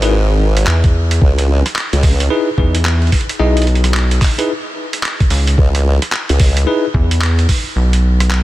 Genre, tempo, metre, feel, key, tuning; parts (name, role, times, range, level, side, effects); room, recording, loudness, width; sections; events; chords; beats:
glitch hop; 110 BPM; 4/4; swing 62% on 16ths; C# minor; A4 = 441 Hz
bell-like tine electric piano; stabs; 0.0-6.8 s; D#4 to D#5; -21 LUFS; left 1 dB; fast stereo tremolo, sidechain pumping, diffuse ambient delay
formant-sweep wobble bass; bass; 0.0-2.3, 5.6-6.7 s; G#1 to C#2; -12 LUFS; equal; chorus
boom bap sampler-style drum kit; drums; 0.0-8.4 s; handclaps, hi-hat, rim click; -20 LUFS; right 1 dB
rubbery square bass; bass; 0.7-8.4 s; B1 to E2; -12 LUFS; equal
electronic kick drum; drums; 0.8-7.6 s; -13 LUFS; equal
little or no reverb; -12 LUFS; side -16 dB against mid
0.0-8.4 A section
0.0 C#m7
0.12 0.67 | 1.21 1.76 2.31 2.85 | 3.40 3.94 4.49 5.03 | 5.58 6.12 6.67 7.21 | 7.76 8.30